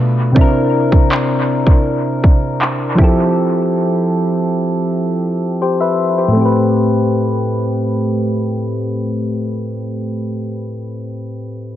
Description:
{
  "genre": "contemporary R&B",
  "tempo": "80 BPM",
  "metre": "4/4",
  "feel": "straight",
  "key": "A minor",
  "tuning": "A4 = 439 Hz",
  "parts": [
    { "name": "soft electric-piano-like synth keys", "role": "accompaniment", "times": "0.0-11.8 s", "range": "A2 to E5", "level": "-15 LUFS", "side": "equal", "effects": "chorus, dub echo" },
    { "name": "trap drum kit", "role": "drums", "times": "0.4-3.2 s", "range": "handclaps, kick drum", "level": "-13 LUFS", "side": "equal", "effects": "dub echo" }
  ],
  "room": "light reverb, digital ambience",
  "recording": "echo-heavy mix, low-pass filter",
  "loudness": "-13 LUFS",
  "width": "side -12 dB against mid",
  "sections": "0.0-6.4 A section; 6.4-9.4 B section",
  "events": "filter sweep 0.0-6.4",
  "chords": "0.4 C7; 3.0 Fmaj7; 6.4 Am7"
}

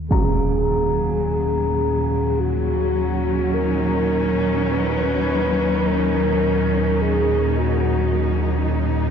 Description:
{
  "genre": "dark ambient drone",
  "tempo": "52 BPM",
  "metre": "4/4",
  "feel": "straight",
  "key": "Eb minor",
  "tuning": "A4 = 440 Hz",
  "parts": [
    { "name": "deep rumbling drone", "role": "drone", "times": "0.0-9.1 s", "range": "Eb2 to Eb3", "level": "-24 LUFS", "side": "equal", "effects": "built-in reverb, phaser" },
    { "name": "mellow horn-like synth lead", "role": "melody", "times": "0.1-8.7 s", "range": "Gb4 to Cb5", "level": "-23 LUFS", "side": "equal", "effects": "chorus, phaser, diffuse ambient delay" },
    { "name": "dark chamber cello section", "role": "sustained chords", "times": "0.1-9.1 s", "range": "Bb2 to Eb4", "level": "-22 LUFS", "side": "equal", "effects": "none" },
    { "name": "bronze singing bowl", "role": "texture", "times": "0.1-9.1 s", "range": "Db4 to Bb5", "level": "-30 LUFS", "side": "right 1 dB", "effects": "none" }
  ],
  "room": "wet huge ambient reverb, RT60 9.2 s",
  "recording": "cassette tape",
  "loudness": "-18 LUFS",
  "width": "side -7 dB against mid",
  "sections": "0.0-9.1 A section",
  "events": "none",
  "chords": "0.1 Ebm7"
}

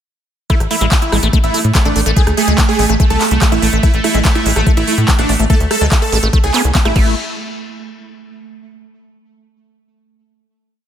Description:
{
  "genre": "psychedelic trance",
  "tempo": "144 BPM",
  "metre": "4/4",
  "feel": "straight",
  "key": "A harmonic minor",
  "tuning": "A4 = 439 Hz",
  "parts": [
    { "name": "dense compressed supersaw", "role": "melody", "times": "0.5-7.1 s", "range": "D4 to A4", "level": "-20 LUFS", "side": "equal", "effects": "phaser, sidechain pumping, analog delay" },
    { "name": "pulsing gated texture", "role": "sustained chords", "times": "0.9-7.0 s", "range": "A3", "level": "-21 LUFS", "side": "right 6 dB", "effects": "chorus, built-in reverb, sidechain pumping" },
    { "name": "liquid acid bass", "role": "riff", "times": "0.5-7.2 s", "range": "G#3 to B3", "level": "-20 LUFS", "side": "equal", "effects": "phaser, auto-pan, sidechain pumping, diffuse ambient delay" },
    { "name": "big-room dance drum kit", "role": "drums", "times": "0.5-7.0 s", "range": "crash cymbal, handclaps, hi-hat, rim click", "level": "-20 LUFS", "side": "right 1 dB", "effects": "none" },
    { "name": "electronic kick drum", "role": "drums", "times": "0.5-7.0 s", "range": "none", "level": "-13 LUFS", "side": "equal", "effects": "overdrive" },
    { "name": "tight sequencer bass", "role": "bass", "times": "0.6-7.2 s", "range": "A1 to A2", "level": "-16 LUFS", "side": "equal", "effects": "none" }
  ],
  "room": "light reverb",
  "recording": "none",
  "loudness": "-11 LUFS",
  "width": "side -10 dB against mid",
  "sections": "0.5-7.2 drop; 7.2-8.8 final hit",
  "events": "drop 0.5-7.2",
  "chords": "0.5 Amaj7(no3); 7.0 A5; 7.2 N.C."
}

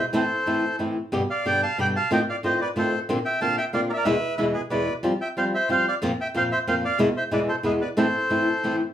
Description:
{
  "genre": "tango",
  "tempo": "183 BPM",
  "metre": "3/4",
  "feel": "rubato",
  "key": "A minor",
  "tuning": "A4 = 438 Hz",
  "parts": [
    { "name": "bandoneon", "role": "melody", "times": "0.0-8.8 s", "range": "G#4 to B5", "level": "-24 LUFS", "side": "right 1 dB", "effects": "none" },
    { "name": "flamenco guitar", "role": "accompaniment", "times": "0.1-8.8 s", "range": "E2 to G4", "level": "-24 LUFS", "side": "equal", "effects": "none" }
  ],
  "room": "wet studio reverb, RT60 0.5 s",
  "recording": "band playing live in one room",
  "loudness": "-21 LUFS",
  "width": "side -10 dB against mid",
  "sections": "0.0-8.9 A section",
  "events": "none",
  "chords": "0.1 Am; 1.1 G; 2.1 F7/A; 3.1 Bbadd9; 4.1 E; 5.0 Fsus2; 6.0 Bbsus2/F; 7.0 E; 8.0 Am"
}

